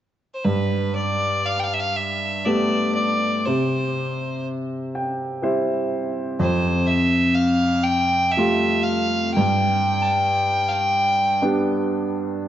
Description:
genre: celtic folk, Celtic slow air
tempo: 60 BPM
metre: 3/4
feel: rubato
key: G mixolydian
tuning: A4 = 441 Hz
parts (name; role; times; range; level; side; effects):
- bright fiddle; melody; 0.3-11.4 s; B4 to A5; -22 LUFS; equal; none
- clear upright piano; accompaniment; 0.4-12.5 s; F2 to G5; -21 LUFS; equal; none
room: moderate concert hall reverb, RT60 2.3 s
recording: dark, warm production, nothing above 7.8 kHz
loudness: -19 LUFS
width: side -11 dB against mid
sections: 0.4-12.5 A section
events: upright piano fill 4.5-6.4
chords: 0.4 Gadd9; 3.5 C; 6.4 Fadd9; 9.4 G

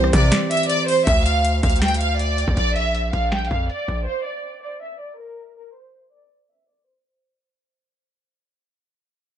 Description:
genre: hip hop, trap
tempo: 160 BPM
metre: 4/4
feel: half-time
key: D minor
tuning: A4 = 440 Hz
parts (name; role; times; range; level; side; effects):
- warm studio violin section; melody; 0.0-7.1 s; Bb4 to G5; -22 LUFS; right 1 dB; digital delay
- tine electric piano; accompaniment; 0.0-1.1 s; E3 to C5; -24 LUFS; left 3 dB; fast stereo tremolo
- distorted 808-style bass; bass; 0.0-4.1 s; Bb1 to C3; -22 LUFS; equal; distortion
- booming analog drum machine; drums; 0.0-4.1 s; finger snaps, hi-hat, kick drum, rim click, snare drum; -22 LUFS; equal; none
room: little or no reverb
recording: low-pass filter, nothing above 10.4 kHz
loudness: -17 LUFS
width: side -10 dB against mid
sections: 0.0-1.1 A section; 1.1-7.1 B section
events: break 0.3-1.1; fade-out 1.1-7.1; filter sweep 1.1-7.1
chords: 0.0 C; 1.1 Dm; 2.6 Bb; 4.1 N.C.

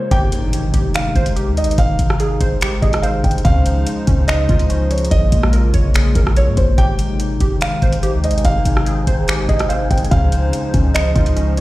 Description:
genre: hip hop, atmospheric cloud-rap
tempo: 144 BPM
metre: 4/4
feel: half-time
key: Ab major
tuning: A4 = 439 Hz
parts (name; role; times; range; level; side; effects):
- felt-muted upright piano; melody; 0.0-11.6 s; C5 to G5; -23 LUFS; right 1 dB; tape echo
- hollow soft pad; sustained chords; 0.0-11.6 s; C3 to C5; -22 LUFS; left 1 dB; chorus
- glassy wavetable pluck; arpeggios; 0.0-11.6 s; Db4 to Db5; -26 LUFS; right 1 dB; chorus, tape echo
- wind-like tuned noise texture; texture; 0.0-0.1, 7.6-11.6 s; C4 to G5; -32 LUFS; left 1 dB; built-in reverb
- clean 808-style bass; bass; 0.1-11.6 s; Ab1 to Bb2; -17 LUFS; equal; none
- booming analog drum machine; drums; 0.1-11.6 s; finger snaps, hi-hat, kick drum, rim click; -18 LUFS; equal; none
- impact; sound effects; 0.2-1.8 s; none; -28 LUFS; equal; none
room: little or no reverb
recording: played on a big sound system in a bare room, stone room reverb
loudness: -13 LUFS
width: side -17 dB against mid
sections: 0.1-11.6 A section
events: impact 0.1-1.8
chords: 0.1 Abmaj7; 3.4 Dbmaj9; 5.1 Bbm7; 6.8 Abmaj7; 10.1 Dbmaj9

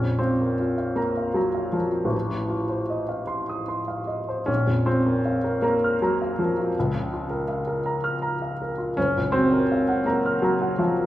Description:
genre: classical, romantic character piece for solo piano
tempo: 79 BPM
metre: 3/4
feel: uneven beats, rubato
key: Bb minor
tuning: A4 = 441 Hz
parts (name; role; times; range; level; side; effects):
- warm upright piano; solo; 0.0-11.1 s; Gb1 to F6; -22 LUFS; equal; none
room: wet recital hall reverb, RT60 1.8 s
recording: heard from further back in the room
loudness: -22 LUFS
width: side -14 dB against mid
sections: 0.0-11.1 A section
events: none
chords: 0.0 Bb5; 2.1 F7/A; 4.5 Bb5; 6.8 Bbm/Db; 9.0 Gbmaj7

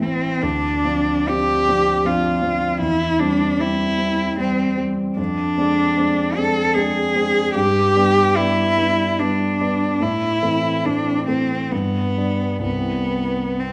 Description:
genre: classical, romantic duo for cello and grand piano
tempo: 62-81 BPM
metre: 3/4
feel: rubato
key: C major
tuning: A4 = 440 Hz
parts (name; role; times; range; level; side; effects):
- rich cello; melody; 0.0-13.7 s; B3 to A4; -21 LUFS; equal; none
- warm concert grand piano; accompaniment; 0.0-13.7 s; A1 to E4; -24 LUFS; equal; none
room: wet recital hall reverb, RT60 1.3 s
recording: none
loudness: -19 LUFS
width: mono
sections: 0.0-13.7 A section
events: none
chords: 0.4 Dm7; 2.8 C/E; 5.2 Dm7b5/F; 7.6 G; 10.0 Am; 11.7 G; 12.6 C

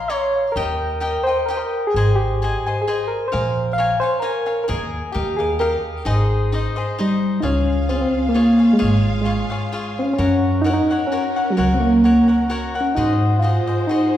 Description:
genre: mexican folk, mariachi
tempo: 131 BPM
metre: 3/4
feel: swing 54% on 8ths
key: Ab major, Db major from 7.4 s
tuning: A4 = 440 Hz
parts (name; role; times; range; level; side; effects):
- soft struck synth lead; melody; 0.0-14.2 s; Gb3 to F5; -19 LUFS; equal; chorus
- cavaquinho; accompaniment; 0.0-14.2 s; Eb4 to C6; -25 LUFS; left 3 dB; none
- upright bass; bass; 0.6-13.6 s; Ab1 to Ab2; -22 LUFS; equal; none
- warm symphonic violin section; sustained chords; 7.4-14.2 s; Ab3 to F5; -31 LUFS; equal; none
room: wet scoring stage reverb, RT60 1.6 s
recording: heard from further back in the room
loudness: -17 LUFS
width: side -11 dB against mid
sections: 0.0-7.4 A section; 7.4-14.2 B section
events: none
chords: 0.0 Bbmadd9; 0.6 Eb; 2.0 Ab; 3.3 Bbm7; 4.7 Ebsus4; 5.1 Ebadd9; 6.1 Ab; 7.4 Db; 10.2 Gb; 13.0 Ab7

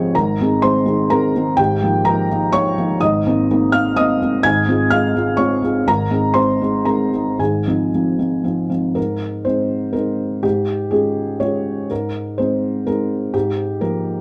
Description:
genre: neoclassical minimalist piano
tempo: 124 BPM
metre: 3/4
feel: rubato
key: Ab major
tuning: A4 = 440 Hz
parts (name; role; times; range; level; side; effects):
- felt-muted upright piano; solo; 0.0-14.2 s; Ab1 to Ab6; -18 LUFS; equal; none
room: light reverb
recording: dark, warm production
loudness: -18 LUFS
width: mono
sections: 0.0-9.0 A section; 9.0-14.2 B section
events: none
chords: 0.1 Abadd9; 1.6 Ebadd9/Ab; 3.0 Abadd9; 4.4 Dbmaj7/Ab; 5.9 Abadd9; 7.4 Ab6; 9.0 Abadd9; 10.4 Db/Ab; 11.9 Abadd9; 13.3 Ebadd9/Ab

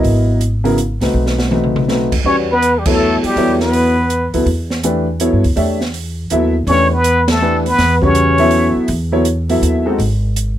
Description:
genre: modal jazz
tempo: 163 BPM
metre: 3/4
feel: swing 65% on 8ths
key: E dorian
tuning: A4 = 440 Hz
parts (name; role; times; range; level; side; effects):
- warm upright piano; accompaniment; 0.0-10.0 s; C#3 to E5; -16 LUFS; equal; none
- upright bass; bass; 0.0-10.6 s; G#1 to G2; -18 LUFS; equal; none
- open jazz drum kit; drums; 0.0-10.5 s; crash cymbal, hi-hat, kick drum, ride cymbal, snare drum, toms; -22 LUFS; right 1 dB; none
- trumpet with plunger mute; melody; 2.3-4.3, 6.7-8.8 s; G4 to C#5; -15 LUFS; equal; none
- trombone with plunger mute; second line; 2.3-4.3, 6.7-8.8 s; G3 to C#4; -19 LUFS; left 3 dB; none
room: light reverb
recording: close, detailed microphones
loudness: -12 LUFS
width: side -12 dB against mid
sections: 0.0-2.3 A section; 2.3-10.6 B section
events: drum fill 1.2-1.9; band accent 2.8, 7.2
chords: 0.0 C#m9 (rootless); 1.2 B7b9; 2.3 Em69; 4.5 Gadd9; 6.7 Em69; 8.9 G#7(no3) (rootless); 10.0 N.C.

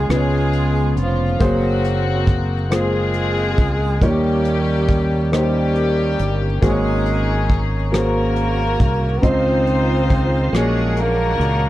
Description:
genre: slow gospel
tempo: 46 BPM (dotted quarters)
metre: 6/8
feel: straight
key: Db major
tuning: A4 = 440 Hz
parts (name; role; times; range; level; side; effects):
- breathy tenor saxophone; melody; 0.0-11.7 s; F3 to C4; -24 LUFS; right 3 dB; none
- warm studio string section; melody; 0.0-11.7 s; Bb3 to C5; -24 LUFS; left 4 dB; none
- warm concert grand piano; accompaniment; 0.0-11.7 s; Ab2 to F5; -22 LUFS; equal; none
- fingered electric bass; bass; 0.0-11.7 s; F1 to Eb2; -20 LUFS; equal; none
- soft brush drum kit; drums; 0.1-11.6 s; hi-hat, kick drum, rim click; -20 LUFS; equal; none
- bright tonewheel organ; sustained chords; 9.2-11.7 s; Db3 to F#4; -28 LUFS; right 3 dB; slow rotary speaker, overdrive, chorus vibrato
room: studio reverb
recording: dry, close 1970s-style studio recording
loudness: -16 LUFS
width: side -15 dB against mid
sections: 0.0-11.7 A section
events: none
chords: 0.1 Db7; 1.4 Gbmaj9#11; 4.0 Eb7; 6.6 Ab9sus4; 9.2 Dbmaj9; 10.5 Bb7alt

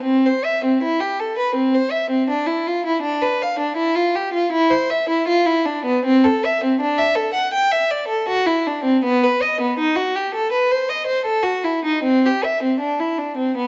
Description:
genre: classical, baroque-style suite movement for unaccompanied violin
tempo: 80 BPM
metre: 4/4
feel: rubato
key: unclear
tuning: A4 = 441 Hz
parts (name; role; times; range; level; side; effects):
- rich violin; solo; 0.0-13.7 s; B3 to G5; -19 LUFS; equal; none
room: moderate stone room reverb, RT60 1.5 s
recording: dark, warm production, nothing above 7.6 kHz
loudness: -19 LUFS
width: mono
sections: 0.0-13.7 A section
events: none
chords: none

